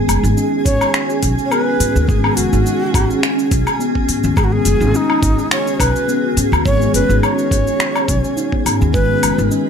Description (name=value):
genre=organic downtempo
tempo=105 BPM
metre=4/4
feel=swing 54% on 16ths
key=unclear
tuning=A4 = 438 Hz
part: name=granular cloud pad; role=sustained chords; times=0.0-9.7 s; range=G#3 to B4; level=-22 LUFS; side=equal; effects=built-in reverb, sidechain pumping
part: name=steel tongue drum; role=arpeggios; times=0.0-9.7 s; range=D#3 to D#4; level=-20 LUFS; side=left 3 dB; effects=digital delay
part: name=twinkling granular texture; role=texture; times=0.0-9.7 s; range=G#4 to B5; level=-28 LUFS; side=right 3 dB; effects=built-in reverb
part: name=upright bass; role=bass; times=0.1-9.5 s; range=F#1 to G#2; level=-18 LUFS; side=equal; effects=sidechain pumping
part: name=organic electronic drum kit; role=drums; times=0.1-9.6 s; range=finger snaps, hi-hat, shaker, woodblock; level=-20 LUFS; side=left 2 dB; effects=none
part: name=breathy low Native American-style wooden flute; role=melody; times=0.7-9.5 s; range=D#4 to C#5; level=-20 LUFS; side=right 1 dB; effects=digital delay
part: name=electronic kick drum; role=drums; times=0.7-9.1 s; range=none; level=-18 LUFS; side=equal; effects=overdrive
room=light reverb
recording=none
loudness=-13 LUFS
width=side -7 dB against mid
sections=0.0-9.7 A section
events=none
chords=0.0 F#sus2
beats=0.37 0.94 1.51 | 2.08 2.66 3.23 3.80 | 4.37 4.94 5.51 6.08 | 6.66 7.23 7.80 8.37 | 8.94 9.51